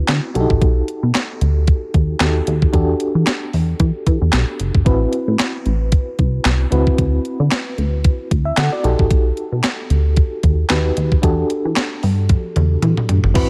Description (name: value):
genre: early-eighties boogie funk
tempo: 113 BPM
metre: 4/4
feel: swing 56% on 16ths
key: unclear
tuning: A4 = 441 Hz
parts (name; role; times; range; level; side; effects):
- FM electric piano with tremolo; accompaniment; 0.0-13.5 s; C4 to F#5; -25 LUFS; equal; none
- plucky analog bass; bass; 0.0-13.5 s; F#1 to E3; -19 LUFS; equal; none
- clean 12-bit digital drum machine; drums; 0.1-13.5 s; crash cymbal, handclaps, hi-hat, kick drum, snare drum, toms; -20 LUFS; equal; overdrive
room: digital ambience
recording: none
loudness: -17 LUFS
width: mono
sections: 0.0-13.4 A section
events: drum fill 12.3-13.4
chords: 0.3 B7b13; 2.7 Em11; 4.9 Am69; 6.7 D13; 8.8 B7b13; 11.2 Em11